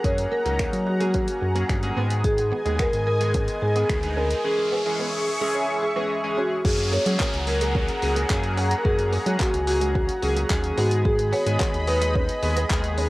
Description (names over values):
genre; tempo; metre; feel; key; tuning
dance-pop; 109 BPM; 4/4; straight; unclear; A4 = 443 Hz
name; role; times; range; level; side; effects
marimba with medium mallets; melody; 0.0-13.1 s; F#4 to C#5; -26 LUFS; equal; cassette tape, tape echo
chorused polysynth; accompaniment; 0.0-13.1 s; D#3 to G#4; -30 LUFS; equal; cassette tape
lush unison pad; sustained chords; 0.0-13.1 s; G#4 to C#6; -30 LUFS; equal; chorus, sidechain pumping, cassette tape
round analog bass; bass; 0.0-13.1 s; C#2 to F#3; -25 LUFS; equal; sidechain pumping
deep house drum kit; drums; 0.0-13.1 s; crash cymbal, finger snaps, handclaps, hi-hat, kick drum; -26 LUFS; equal; cassette tape
direct-recorded clean electric guitar; riff; 0.2-13.1 s; G#3 to C#4; -33 LUFS; right 6 dB; ensemble chorus, cassette tape
riser and downlifter; sound effects; 3.3-11.1 s; none; -34 LUFS; equal; none
room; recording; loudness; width
light reverb; home recording on cassette; -20 LUFS; side -19 dB against mid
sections
0.0-6.6 A section; 6.6-13.1 B section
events
riser 3.3-6.6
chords
0.0 F#add9; 2.0 G#m; 4.4 C#m; 6.6 F#add9; 10.8 G#m